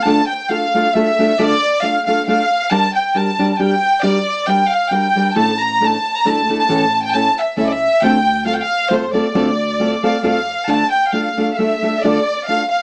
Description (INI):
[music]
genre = mexican folk, mariachi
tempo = 136 BPM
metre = 3/4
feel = swing 54% on 8ths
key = D minor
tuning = A4 = 440 Hz
[part]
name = dark chamber violin section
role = melody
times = 0.0-12.8 s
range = C5 to Bb5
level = -18 LUFS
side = equal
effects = none
[part]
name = nylon-string guitar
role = accompaniment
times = 0.1-12.6 s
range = A2 to Bb4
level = -20 LUFS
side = equal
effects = none
[part]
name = upright bass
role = bass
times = 5.4-10.5 s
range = A1 to F2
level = -27 LUFS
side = equal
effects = none
[sound]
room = moderate studio reverb, RT60 0.5 s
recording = small speaker sound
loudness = -16 LUFS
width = mono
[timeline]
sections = 0.1-10.7 A section; 10.7-12.8 A section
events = none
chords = 0.1 Dm; 2.7 Gm; 5.4 Asus4; 6.7 A; 8.0 Dm7; 10.7 Dm